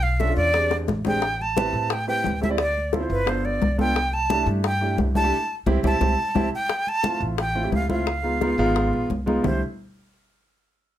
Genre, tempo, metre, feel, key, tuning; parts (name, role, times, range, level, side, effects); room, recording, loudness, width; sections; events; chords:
Afro-Cuban jazz; 175 BPM; 4/4; straight; C major; A4 = 440 Hz
breathy bright jazz flute; melody; 0.0-9.6 s; B4 to A5; -24 LUFS; right 1 dB
upright bass; bass; 0.0-9.6 s; G1 to A2; -26 LUFS; equal
congas; percussion; 0.0-9.5 s; -28 LUFS; left 1 dB
warm concert grand piano; accompaniment; 0.2-9.6 s; G3 to D5; -26 LUFS; right 1 dB
bongos; percussion; 0.2-9.5 s; -30 LUFS; left 7 dB
moderate small room reverb, RT60 0.6 s; -20 LUFS; side -12 dB against mid
0.0-6.7 A section; 6.7-9.4 B section; 9.4-10.8 C section
drum fill 0.7-1.2, 6.0-6.7; band accent 5.3-6.7
0.0 Bm7b5; 0.5 E7alt; 1.2 Am9; 2.6 Dm7; 3.3 G7; 4.0 C6; 6.7 A7b13; 8.1 Db9; 9.4 C6